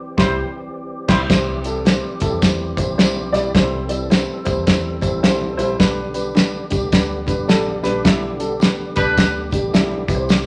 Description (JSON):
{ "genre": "uptempo 1960s-style soul", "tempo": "107 BPM", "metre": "4/4", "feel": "swing 62% on 8ths", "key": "C major", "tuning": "A4 = 443 Hz", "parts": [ { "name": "tonewheel organ", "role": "sustained chords", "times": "0.0-10.5 s", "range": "D3 to A4", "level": "-33 LUFS", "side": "equal", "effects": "slow rotary speaker, overdrive, chorus vibrato" }, { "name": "warm horn section", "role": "second line", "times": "0.2-1.2, 9.0-9.3 s", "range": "G3 to C5", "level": "-23 LUFS", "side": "equal", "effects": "none" }, { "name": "dark upright piano", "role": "accompaniment", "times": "0.2-10.5 s", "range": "G3 to D5", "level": "-24 LUFS", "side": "equal", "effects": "none" }, { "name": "vintage muted fingered electric bass", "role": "bass", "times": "0.2-10.5 s", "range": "G1 to E2", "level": "-31 LUFS", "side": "equal", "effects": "none" }, { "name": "cloth-damped thuddy drum kit", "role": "drums", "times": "0.2-10.5 s", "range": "crash cymbal, hi-hat, kick drum, snare drum", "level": "-19 LUFS", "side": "equal", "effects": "none" }, { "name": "congas", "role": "percussion", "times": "1.3-10.5 s", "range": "none", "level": "-38 LUFS", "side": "equal", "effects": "none" }, { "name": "tambourine", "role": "percussion", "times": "1.3-10.5 s", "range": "none", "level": "-35 LUFS", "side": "equal", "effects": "none" } ], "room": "moderate large studio reverb, RT60 0.9 s", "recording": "none", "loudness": "-18 LUFS", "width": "mono", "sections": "0.0-1.3 A section; 1.3-10.5 A section", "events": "band accent 0.0-1.3, 8.0-10.3", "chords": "0.0 C; 5.8 G", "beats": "0.18 0.74 | 1.30 1.86 2.43 2.99 | 3.55 4.11 4.67 5.24 | 5.80 6.36 6.92 7.48 | 8.04 8.61 9.17 9.73 | 10.29" }